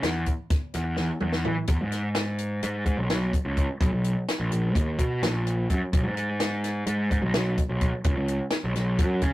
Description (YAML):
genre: math rock and midwest emo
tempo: 255 BPM (eighths)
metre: 9/8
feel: straight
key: E lydian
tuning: A4 = 438 Hz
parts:
  - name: fuzz picked electric bass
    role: bass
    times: 0.0-9.3 s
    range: A#1 to E3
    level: -26 LUFS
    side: equal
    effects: overdrive
  - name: compact cocktail drum kit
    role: drums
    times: 0.0-9.3 s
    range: hi-hat, kick drum, snare drum, toms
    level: -26 LUFS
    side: equal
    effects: none
room: light reverb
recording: rough rehearsal-room recording, tube saturation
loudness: -24 LUFS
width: side -16 dB against mid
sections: 0.0-1.7 A section; 1.7-9.3 B section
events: drum fill 1.0-1.7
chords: none